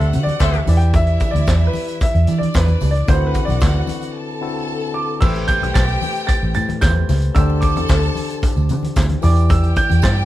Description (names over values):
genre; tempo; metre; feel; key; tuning
disco; 112 BPM; 4/4; straight; unclear; A4 = 441 Hz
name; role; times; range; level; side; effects
warm baby grand piano; melody; 0.0-10.2 s; B4 to A6; -24 LUFS; right 2 dB; none
warm studio violin section; second line; 0.0-10.2 s; D4 to A5; -28 LUFS; equal; none
barky tine electric piano; accompaniment; 0.0-10.2 s; D3 to D5; -26 LUFS; left 4 dB; overdrive
mellow horn section; stabs; 0.0-0.6 s; G4 to C5; -26 LUFS; left 1 dB; none
vintage muted fingered electric bass; bass; 0.0-10.2 s; A1 to E3; -16 LUFS; equal; none
vintage drum kit; drums; 0.0-10.2 s; crash cymbal, handclaps, hi-hat, kick drum, snare drum; -19 LUFS; equal; none
congas; percussion; 0.0-10.2 s; none; -28 LUFS; left 3 dB; none
tambourine; percussion; 0.1-10.2 s; none; -41 LUFS; right 4 dB; none
room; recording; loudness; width
light reverb; band playing live in one room; -14 LUFS; side -14 dB against mid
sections
0.0-5.2 A section; 5.2-10.2 B section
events
grand piano solo 0.0-5.2; break 4.2-5.2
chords
0.0 D7sus4; 0.7 Em7; 3.1 D13; 5.2 Am9; 7.4 D7sus4; 9.2 Em7